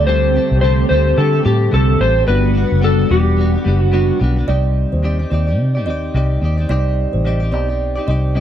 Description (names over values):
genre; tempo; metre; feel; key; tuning
indie pop, bedroom pop; 109 BPM; 4/4; swing 60% on 16ths; unclear; A4 = 438 Hz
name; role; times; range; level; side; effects
electric slide guitar; melody; 0.0-4.2 s; G4 to C5; -17 LUFS; left 1 dB; lush chorus, slapback echo
direct-recorded clean electric guitar; accompaniment; 0.0-8.4 s; C3 to D5; -22 LUFS; left 2 dB; lush chorus, warbly pitch drift
hollow soft pad; sustained chords; 0.0-4.5 s; D3 to F#5; -22 LUFS; equal; ensemble chorus
vintage muted fingered electric bass; bass; 0.0-8.4 s; E1 to D3; -15 LUFS; equal; none
kalimba; second line; 4.5-8.4 s; C5 to Eb5; -25 LUFS; right 6 dB; wide subtle chorus, slapback echo
room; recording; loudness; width
little or no reverb; dry, close 1970s-style studio recording; -13 LUFS; side -10 dB against mid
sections
0.0-4.5 A section; 4.5-8.4 B section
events
none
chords
0.0 D7sus4; 2.3 Gmaj7; 4.5 Cmadd9